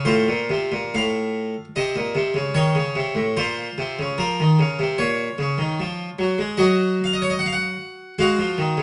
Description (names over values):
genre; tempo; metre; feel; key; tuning
classical, baroque-style suite movement for harpsichord; 75 BPM; 4/4; rubato; Bb minor; A4 = 443 Hz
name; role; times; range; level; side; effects
harpsichord; solo; 0.0-8.8 s; A2 to Gb5; -22 LUFS; equal; none
room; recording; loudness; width
moderate stone room reverb, RT60 0.9 s; nothing above 10.8 kHz; -22 LUFS; mono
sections
0.0-8.8 A section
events
none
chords
0.1 F/A; 3.4 Bbm; 6.6 N.C.; 8.2 Ab7(no3)